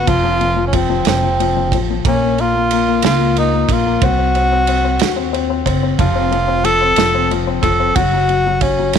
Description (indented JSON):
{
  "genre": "six-eight pop ballad",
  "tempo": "61 BPM (dotted quarters)",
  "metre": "6/8",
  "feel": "straight",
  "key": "unclear",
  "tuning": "A4 = 440 Hz",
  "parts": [
    { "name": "warm tenor saxophone", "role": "melody", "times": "0.0-9.0 s", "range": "C4 to A4", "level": "-16 LUFS", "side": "right 1 dB", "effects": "none" },
    { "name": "dark baby grand piano", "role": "accompaniment", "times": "0.0-9.0 s", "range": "F3 to Gb4", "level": "-19 LUFS", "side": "left 14 dB", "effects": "none" },
    { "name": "upright bass", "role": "bass", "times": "0.0-9.0 s", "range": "F1 to Eb2", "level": "-20 LUFS", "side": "right 2 dB", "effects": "none" },
    { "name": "loose indie drum kit", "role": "drums", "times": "0.1-9.0 s", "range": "kick drum, ride cymbal, snare drum", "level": "-21 LUFS", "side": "right 6 dB", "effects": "none" }
  ],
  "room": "small room reverb",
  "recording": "1960s-style stereo with parts hard left and right",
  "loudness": "-13 LUFS",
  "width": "side -7 dB against mid",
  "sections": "0.0-9.0 A section",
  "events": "none",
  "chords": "0.1 F5; 1.1 F; 2.0 Bbm; 4.0 Cdim; 6.0 F5; 8.0 Gb5"
}